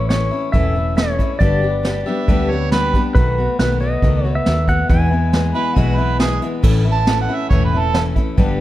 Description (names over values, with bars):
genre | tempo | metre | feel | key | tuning
honky-tonk and classic country | 138 BPM | 4/4 | straight | A major | A4 = 440 Hz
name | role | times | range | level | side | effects
pedal steel guitar | melody | 0.0-6.2 s | B4 to G#5 | -22 LUFS | left 1 dB | none
picked steel-string acoustic guitar | accompaniment | 0.0-8.6 s | E2 to G4 | -21 LUFS | left 3 dB | none
vintage muted fingered electric bass | bass | 0.0-8.6 s | E1 to E2 | -19 LUFS | equal | none
vintage brush drum kit | drums | 0.1-8.5 s | crash cymbal, hi-hat, kick drum, snare drum | -18 LUFS | right 1 dB | none
mellow harmonica | second line | 2.1-8.0 s | F#4 to A5 | -22 LUFS | right 5 dB | none
room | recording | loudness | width
light reverb | faint mains hum | -14 LUFS | side -14 dB against mid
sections
0.0-6.6 A section; 6.6-8.6 B section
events
harmonica solo 6.6-8.6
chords
0.0 A; 1.4 G; 3.1 B7; 4.9 E; 6.6 A